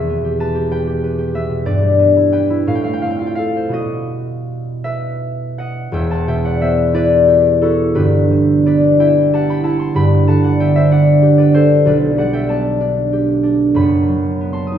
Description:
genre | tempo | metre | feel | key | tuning
classical, solo harp piece | 54-65 BPM (dotted quarters) | 6/8 | rubato | E minor | A4 = 440 Hz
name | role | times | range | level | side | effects
concert harp | solo | 0.0-14.8 s | E1 to D#6 | -13 LUFS | equal | none
room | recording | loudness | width
wet recital hall reverb, RT60 1.3 s | heard from further back in the room | -12 LUFS | side -9 dB against mid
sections
0.0-5.9 A section; 5.9-14.8 B section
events
none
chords
0.0 Em; 1.7 Em/G; 2.7 F/A; 3.7 B; 5.9 Em; 7.9 Em/G; 11.9 G/B; 13.8 B7/F#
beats
0.72 | 1.67 2.67 | 3.74 4.84 | 5.93 6.95 | 7.94 9.00 | 9.96 10.91 | 11.86 12.80 | 13.76 14.72

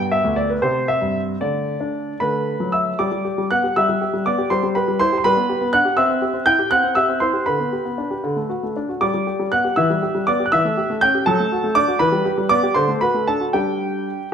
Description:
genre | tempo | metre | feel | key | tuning
classical-period piano sonatina | 75-83 BPM (dotted quarters) | 6/8 | rubato | G major | A4 = 436 Hz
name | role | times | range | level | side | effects
clear grand piano | solo | 0.0-14.3 s | D2 to G6 | -17 LUFS | equal | none
room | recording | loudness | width
moderate recital hall reverb, RT60 1.6 s | none | -17 LUFS | side -7 dB against mid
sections
0.0-3.0 A section; 3.0-14.3 B section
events
none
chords
0.0 G; 0.6 C; 1.4 D5; 2.2 D; 3.0 G; 4.5 C/G; 5.2 G; 6.0 C; 7.5 G/D; 8.2 D; 9.0 G; 9.8 Em; 10.5 A7/E; 11.3 D/F#; 12.0 Em; 12.7 D7; 13.5 G5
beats
0.63 | 1.41 2.21 | 2.99 3.76 | 4.51 5.25 | 5.98 6.71 | 7.47 8.24 | 9.02 9.78 | 10.53 11.27 | 12.00 12.75 | 13.53

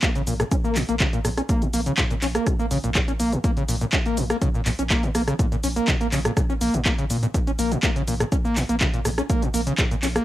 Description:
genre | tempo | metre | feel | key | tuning
acid house | 123 BPM | 4/4 | straight | Bb minor | A4 = 439 Hz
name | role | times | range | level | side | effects
overdriven acid bass | riff | 0.0-10.2 s | Bb2 to Db4 | -24 LUFS | equal | distortion, wide subtle chorus, sidechain pumping, cassette tape, tape echo
electronic kick drum | drums | 0.0-9.9 s | none | -23 LUFS | equal | cassette tape
punchy analog drum machine | drums | 0.0-10.2 s | handclaps, hi-hat, rim click, shaker | -26 LUFS | equal | cassette tape
round analog bass | bass | 0.3-10.2 s | Bb1 to Bb2 | -28 LUFS | equal | sidechain pumping
room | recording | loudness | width
light reverb | home recording on cassette | -20 LUFS | side -14 dB against mid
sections
0.0-10.2 A section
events
none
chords
0.0 Bbm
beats
0.03 0.52 1.00 | 1.49 1.98 2.47 2.95 | 3.44 3.93 4.42 4.91 | 5.39 5.88 6.37 6.86 | 7.34 7.83 8.32 8.81 | 9.29 9.78

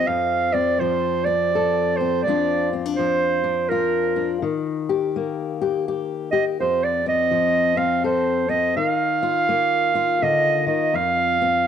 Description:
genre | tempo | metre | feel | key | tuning
acoustic folk duo or small band | 83 BPM | 3/4 | swing 62% on 8ths | unclear | A4 = 440 Hz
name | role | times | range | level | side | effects
clear clarinet | melody | 0.0-11.7 s | Bb4 to F5 | -20 LUFS | right 5 dB | cassette tape
fingerpicked steel-string acoustic guitar | accompaniment | 0.0-11.7 s | F2 to A4 | -23 LUFS | left 8 dB | none
room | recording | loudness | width
moderate spring reverb, RT60 2.0 s | home recording on cassette | -19 LUFS | side -8 dB against mid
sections
0.0-8.8 A section; 8.8-11.7 B section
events
clarinet solo 0.0-8.8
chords
0.1 F; 2.2 Bbadd9/F; 4.4 Eb; 6.6 F; 8.8 Ebsus2; 10.9 F5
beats
| 0.07 0.80 1.52 | 2.25 2.97 3.70 | 4.42 5.15 5.87 | 6.60 7.32 8.05 | 8.77 9.49 10.22 | 10.94 11.66

